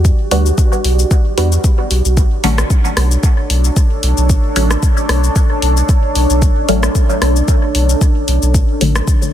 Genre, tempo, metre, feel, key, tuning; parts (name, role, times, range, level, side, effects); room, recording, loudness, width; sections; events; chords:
dub techno; 113 BPM; 4/4; swing 55% on 16ths; A4 = 444 Hz
deep dark ambient pad; sustained chords; 0.0-9.3 s; D4 to D5; -20 LUFS; equal; chorus, built-in reverb, sidechain pumping
warm sub bass; bass; 0.0-9.0 s; A1 to E2; -13 LUFS; equal; sidechain pumping
deep house drum kit; drums; 0.0-9.3 s; cabasa, hi-hat, rim click; -21 LUFS; left 2 dB; soft clipping on snare, dub echo
electronic kick drum; drums; 0.0-9.2 s; -12 LUFS; equal
filtered dub chord stab; stabs; 0.3-9.0 s; D3 to F#4; -20 LUFS; left 1 dB; phaser, sidechain pumping, dub echo
little or no reverb; dense, heavily limited modern master; -11 LUFS; side -11 dB against mid
0.0-9.3 A section
0.0 Em9; 1.6 Bm9